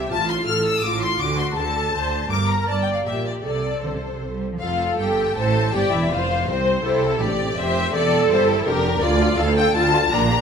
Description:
quick classical-period movement for string orchestra; 162 BPM; 3/4; rubato; F major; A4 = 440 Hz
warm symphonic violin section; second line; 0.0-10.4 s; C4 to F6; -28 LUFS; left 3 dB
rich symphonic viola section; accompaniment; 0.0-10.4 s; D4 to D5; -23 LUFS; right 2 dB
rich symphonic cello section; bass; 0.0-10.4 s; C2 to G3; -26 LUFS; right 3 dB
warm studio double bass section; bass; 0.0-10.4 s; E1 to D2; -26 LUFS; right 3 dB
warm symphonic violin section; melody; 0.1-10.4 s; A4 to F6; -23 LUFS; left 6 dB
wet recital hall reverb, RT60 1.6 s; -18 LUFS; side -6 dB against mid
0.0-4.6 A section; 4.6-10.4 B section
0.1 F/A; 1.2 D7; 2.3 Gm; 3.1 Gm/Bb; 3.4 Amadd11/C; 4.2 C5; 4.6 F; 5.7 F5; 6.9 C; 7.9 Gm13/E; 9.0 Dm

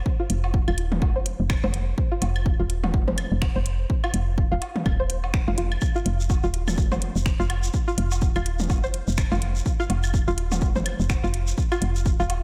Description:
minimal techno; 125 BPM; 4/4; swing 58% on 16ths; A4 = 441 Hz
woody FM bass; bass; 0.0-12.4 s; Eb1 to F1; -28 LUFS; equal; sidechain pumping
electronic kick drum; drums; 0.1-12.2 s; -26 LUFS; equal; small room ambience
string-like resonator pluck; riff; 0.2-12.2 s; F4 to C5; -34 LUFS; equal; chorus, sidechain pumping, diffuse ambient delay
house drum kit; drums; 0.3-12.4 s; finger snaps, hi-hat; -35 LUFS; equal; small room ambience
electronic woodblock and toms; percussion; 0.4-12.4 s; -34 LUFS; equal; small room ambience
shekere; percussion; 5.8-12.3 s; -41 LUFS; equal
light reverb, digital ambience; -24 LUFS; mono
0.0-12.4 A section
filter sweep on synth pluck 0.0-12.4
0.0 F5

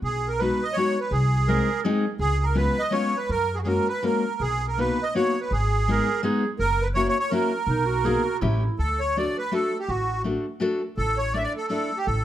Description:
musette waltz; 165 BPM; 3/4; swing 55% on 8ths, rubato; B major, D major from 8.8 s; A4 = 440 Hz
accordion; melody; 0.0-12.2 s; F#4 to E5; -25 LUFS; right 2 dB; light tremolo tuning
upright bass; bass; 0.0-12.2 s; F#1 to F#2; -26 LUFS; equal
fingerpicked steel-string acoustic guitar; accompaniment; 0.4-11.9 s; G#3 to A4; -26 LUFS; left 3 dB
warm clarinet; second line; 1.5-2.1, 5.9-8.8 s; D#4 to A#4; -29 LUFS; right 6 dB
light reverb; close, detailed microphones; -22 LUFS; side -12 dB against mid
0.0-8.8 A section; 8.8-12.2 B section
0.0 B6; 1.1 G#/B#; 2.2 C#7; 3.3 F#add9; 4.4 Bmaj7; 5.5 G#m; 6.6 F#7; 7.7 Bmaj7; 8.4 A7; 8.8 D; 11.0 Asus4

